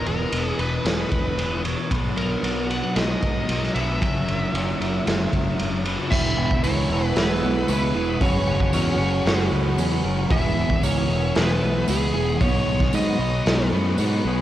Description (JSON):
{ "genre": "rock, shoegaze and dream pop", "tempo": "114 BPM", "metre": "4/4", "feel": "straight", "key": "E lydian", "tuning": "A4 = 441 Hz", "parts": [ { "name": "smooth overdriven lead guitar", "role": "melody", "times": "0.0-13.7 s", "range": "G#4 to F#5", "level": "-28 LUFS", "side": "equal", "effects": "cassette tape, analog delay" }, { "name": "string machine, violins", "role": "sustained chords", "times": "0.0-14.4 s", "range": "B3 to E6", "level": "-33 LUFS", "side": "equal", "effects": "ensemble chorus, cassette tape" }, { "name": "electric guitar through a small old amp", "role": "arpeggios", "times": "0.0-14.4 s", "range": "G#4 to C#5", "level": "-36 LUFS", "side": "right 9 dB", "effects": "wide subtle chorus, cassette tape, analog delay" }, { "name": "electric guitar through a small old amp", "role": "riff", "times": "0.0-14.4 s", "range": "E2 to C#5", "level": "-30 LUFS", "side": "right 9 dB", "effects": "reverse reverb, cassette tape" }, { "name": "thick fuzz guitar", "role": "riff", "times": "0.0-14.4 s", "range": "E2 to B3", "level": "-27 LUFS", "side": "left 6 dB", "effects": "distortion, analog chorus, cassette tape" }, { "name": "growling fingered electric bass", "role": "bass", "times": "0.1-14.4 s", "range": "E1 to G#2", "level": "-26 LUFS", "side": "equal", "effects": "overdrive" }, { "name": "raw garage drum kit", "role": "drums", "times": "0.1-14.1 s", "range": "crash cymbal, hi-hat, kick drum, ride cymbal, snare drum", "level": "-24 LUFS", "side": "equal", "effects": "none" }, { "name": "tambourine", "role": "percussion", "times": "6.6-14.1 s", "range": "none", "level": "-37 LUFS", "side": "right 12 dB", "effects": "none" } ], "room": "small room ambience", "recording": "home recording on cassette", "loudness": "-20 LUFS", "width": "side -13 dB against mid", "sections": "0.0-6.1 A section; 6.1-14.4 B section", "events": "none", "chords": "0.0 Emaj7; 1.9 Bmaj7; 4.0 F#7; 6.1 E; 8.2 F#sus2; 10.3 E; 12.4 Badd9" }